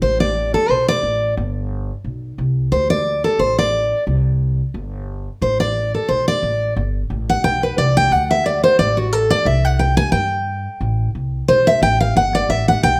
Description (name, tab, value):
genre	bluegrass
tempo	178 BPM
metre	4/4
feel	swing 55% on 8ths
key	G major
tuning	A4 = 440 Hz
part	picked steel-string acoustic guitar	accompaniment	0.0-13.0 s	F#4 to Ab5	-18 LUFS	equal	none
part	upright bass	bass	0.0-13.0 s	G1 to G2	-23 LUFS	equal	none
room	moderate large studio reverb, RT60 0.8 s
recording	none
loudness	-18 LUFS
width	mono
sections	0.0-5.4 A section; 5.4-13.0 A section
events	steel-string acoustic guitar solo 0.0-13.0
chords	0.0 Amadd11; 1.4 G; 2.7 D5; 4.1 N.C.; 5.4 Amadd11; 6.8 G; 8.1 D5; 9.5 C5; 10.8 Am; 12.2 G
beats	| 0.02 0.36 0.70 1.03 | 1.37 1.71 2.04 2.38 | 2.72 3.06 3.39 3.73 | 4.07 4.41 4.74 5.08 | 5.42 5.75 6.09 6.43 | 6.76 7.10 7.44 7.78 | 8.11 8.45 8.79 9.12 | 9.46 9.80 10.14 10.47 | 10.81 11.15 11.48 11.82 | 12.16 12.49 12.83